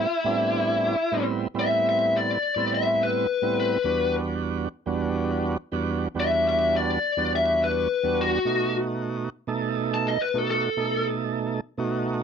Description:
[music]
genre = blues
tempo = 104 BPM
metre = 4/4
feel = swing 53% on 16ths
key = E minor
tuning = A4 = 440 Hz
[part]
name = biting lead guitar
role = melody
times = 0.0-11.1 s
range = E4 to A5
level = -23 LUFS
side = left 3 dB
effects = overdrive
[part]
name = tonewheel organ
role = accompaniment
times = 0.0-12.2 s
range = E2 to A4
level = -26 LUFS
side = right 5 dB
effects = overdrive, slow rotary speaker
[sound]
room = light reverb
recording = dry, close 1970s-style studio recording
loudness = -22 LUFS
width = side -7 dB against mid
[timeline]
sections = 0.0-12.2 A section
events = none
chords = 0.0 Am9; 3.9 Em9; 8.5 B7

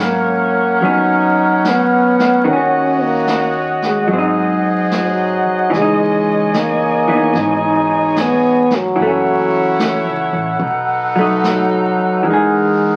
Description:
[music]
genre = jazz ballad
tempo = 74 BPM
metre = 4/4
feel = swing 68% on 8ths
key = G# minor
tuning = A4 = 440 Hz
[part]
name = breathy trombone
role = melody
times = 0.0-13.0 s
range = F#3 to D#4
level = -19 LUFS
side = equal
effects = none
[part]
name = vintage hollow-body jazz guitar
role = accompaniment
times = 0.0-13.0 s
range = D#3 to G#4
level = -21 LUFS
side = equal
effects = none
[part]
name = mellow saxophone section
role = sustained chords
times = 0.0-13.0 s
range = C#4 to G#5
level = -20 LUFS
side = equal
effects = none
[part]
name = upright bass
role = bass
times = 0.0-13.0 s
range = F#1 to E2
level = -32 LUFS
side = equal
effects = none
[part]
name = jazz brush drum kit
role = drums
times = 0.8-13.0 s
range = brushed snare drum, hi-hat, snare drum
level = -26 LUFS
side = equal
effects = none
[sound]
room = wet studio reverb, RT60 0.8 s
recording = very old 78 rpm record, vinyl crackle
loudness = -15 LUFS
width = mono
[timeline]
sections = 0.0-13.0 A section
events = none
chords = 0.0 G#m11; 2.5 D#m7; 4.1 G#7; 5.7 C#m9; 9.0 F#m7; 10.6 B7; 12.2 Emaj9#11

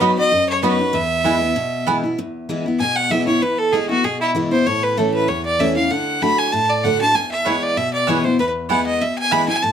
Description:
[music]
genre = bluegrass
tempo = 193 BPM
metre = 4/4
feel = swing 53% on 8ths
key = E mixolydian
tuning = A4 = 439 Hz
[part]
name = clear fiddle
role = melody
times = 0.0-9.7 s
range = E4 to B5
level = -18 LUFS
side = right 1 dB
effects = plate reverb
[part]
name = picked steel-string acoustic guitar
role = accompaniment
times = 0.0-9.7 s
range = E2 to F#4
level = -20 LUFS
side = left 1 dB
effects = none
[part]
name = mandolin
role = stabs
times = 0.0-2.0, 7.4-9.4 s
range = B3 to B5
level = -21 LUFS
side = right 4 dB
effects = none
[sound]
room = moderate small room reverb, RT60 0.6 s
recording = none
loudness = -16 LUFS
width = side -8 dB against mid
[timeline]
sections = 0.0-2.2 A section; 2.2-9.7 B section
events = fiddle solo 2.2-9.7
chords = 0.0 B; 0.9 E; 4.7 A; 5.9 D; 7.1 E

